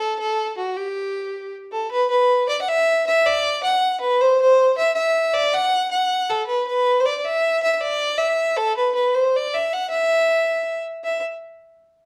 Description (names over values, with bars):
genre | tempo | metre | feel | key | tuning
celtic folk | 105 BPM (dotted quarters) | 6/8 | straight | E minor | A4 = 440 Hz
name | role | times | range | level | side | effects
warm fiddle | solo | 0.0-11.2 s | F#4 to F#5 | -20 LUFS | equal | slapback echo
room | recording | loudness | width
light reverb | dark, warm production | -20 LUFS | mono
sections
0.0-1.9 A section; 1.9-11.0 B section; 11.0-12.1 C section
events
none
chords
none